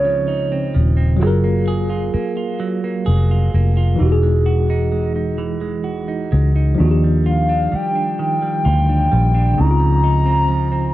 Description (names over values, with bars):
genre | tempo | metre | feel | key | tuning
slow six-eight R&B | 43 BPM (dotted quarters) | 6/8 | straight | unclear | A4 = 444 Hz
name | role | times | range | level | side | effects
hollow clarinet-like synth lead | melody | 0.0-0.8, 7.3-10.9 s | Db5 to Bb5 | -20 LUFS | equal | chorus
clean electric guitar | second line | 0.0-10.9 s | Db3 to Ab4 | -23 LUFS | right 5 dB | harmonic tremolo
tine electric piano | accompaniment | 0.0-10.9 s | Db3 to Bb4 | -23 LUFS | left 1 dB | overdrive, fast stereo tremolo
vintage muted fingered electric bass | bass | 0.0-10.9 s | Eb1 to Eb2 | -16 LUFS | equal | none
room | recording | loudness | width
digital ambience | dry, gritty hardware recording | -15 LUFS | side -15 dB against mid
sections
0.0-10.9 A section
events
none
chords
0.0 Dbmaj9; 1.2 Gbmaj9; 4.0 Emaj9; 6.8 Ebmaj9; 9.6 Dbmaj9